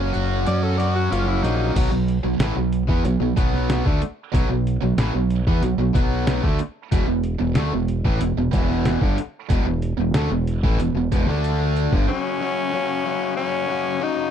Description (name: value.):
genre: classic rock.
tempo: 93 BPM.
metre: 4/4.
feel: straight.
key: unclear.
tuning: A4 = 440 Hz.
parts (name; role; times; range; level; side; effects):
overdriven electric guitar; riff; 0.0-14.3 s; E2 to F#4; -26 LUFS; left 15 dB; none.
tight distorted guitar; riff; 0.0-12.1 s; E2 to F#4; -25 LUFS; right 14 dB; distortion.
growling fingered electric bass; bass; 0.0-12.1 s; E1 to F#2; -23 LUFS; equal; overdrive.
trip hop sampler-style drum kit; drums; 0.1-12.1 s; crash cymbal, hi-hat, kick drum, snare drum; -22 LUFS; equal; none.
raspy tenor saxophone; melody; 0.5-1.7, 12.1-14.3 s; C#4 to D5; -25 LUFS; equal; slapback echo.
room: little or no reverb.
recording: dry, close 1970s-style studio recording.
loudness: -19 LUFS.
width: side -8 dB against mid.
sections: 0.0-1.8 A section; 1.8-12.1 B section; 12.1-14.3 C section.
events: tenor saxophone solo 0.0-1.8; kick and snare drop out 0.5-1.8, 11.4-12.1.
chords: 0.0 F#; 1.8 B5; 6.9 E5; 11.3 D5; 11.9 G5; 12.1 F#5.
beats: 0.47 1.11 | 1.76 2.40 3.05 3.69 | 4.34 4.98 5.63 6.28 | 6.92 7.57 8.21 8.85 | 9.50 10.14 10.79 11.43 | 12.07 12.72 13.36 14.00.